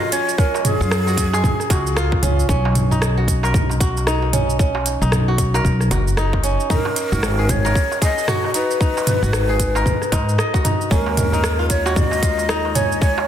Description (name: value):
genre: organic downtempo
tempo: 114 BPM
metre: 4/4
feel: swing 60% on 16ths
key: unclear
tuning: A4 = 444 Hz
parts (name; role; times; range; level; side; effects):
- breathy ney; melody; 0.0-1.7, 6.7-13.3 s; Ab4 to Eb5; -23 LUFS; left 2 dB; ping-pong delay
- kora; arpeggios; 0.0-13.3 s; Db4 to Eb5; -23 LUFS; right 1 dB; tape echo
- darbuka; percussion; 0.0-13.3 s; none; -29 LUFS; right 3 dB; none
- quartz singing bowl; texture; 0.0-13.3 s; F3 to Bb5; -34 LUFS; left 1 dB; none
- organic electronic drum kit; drums; 0.1-13.1 s; cabasa, hi-hat, rim click, toms; -23 LUFS; right 1 dB; overdrive
- electronic kick drum; drums; 0.4-13.1 s; none; -20 LUFS; equal; overdrive
- upright bass; bass; 0.8-13.3 s; F#1 to Ab2; -20 LUFS; equal; sidechain pumping
room: light reverb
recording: dense, heavily limited modern master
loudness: -16 LUFS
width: side -10 dB against mid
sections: 0.0-13.3 A section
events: none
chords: 0.0 Gbmaj7sus2; 2.5 Bmaj9; 6.7 Abm9; 10.9 Ebm11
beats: | 0.39 0.91 1.44 1.96 | 2.49 3.02 3.54 4.07 | 4.60 5.12 5.65 6.17 | 6.70 7.23 7.75 8.28 | 8.81 9.33 9.86 10.38 | 10.91 11.44 11.96 12.49 | 13.02